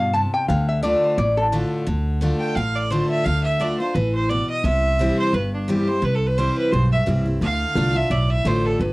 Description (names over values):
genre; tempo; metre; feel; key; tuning
bluegrass; 173 BPM; 4/4; swing 56% on 8ths; D dorian; A4 = 442 Hz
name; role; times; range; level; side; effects
lap resonator guitar; second line; 0.0-1.5 s; A4 to A5; -20 LUFS; left 1 dB; cassette tape
picked steel-string acoustic guitar; accompaniment; 0.0-8.9 s; G2 to F4; -23 LUFS; left 1 dB; cassette tape
upright bass; bass; 0.0-8.9 s; G1 to G2; -22 LUFS; equal; none
clear fiddle; melody; 2.4-8.9 s; D4 to G5; -23 LUFS; right 1 dB; cassette tape
room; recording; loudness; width
light reverb; home recording on cassette; -18 LUFS; side -22 dB against mid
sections
0.0-1.9 A section; 1.9-8.9 B section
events
resonator guitar played with a steel bar solo 0.0-1.9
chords
0.5 Dm; 4.6 C; 7.4 Dm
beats
0.14 | 0.49 0.83 1.18 1.53 | 1.87 2.22 2.56 2.91 | 3.26 3.60 3.95 4.30 | 4.64 4.99 5.33 5.68 | 6.03 6.37 6.72 7.07 | 7.41 7.76 8.11 8.45 | 8.80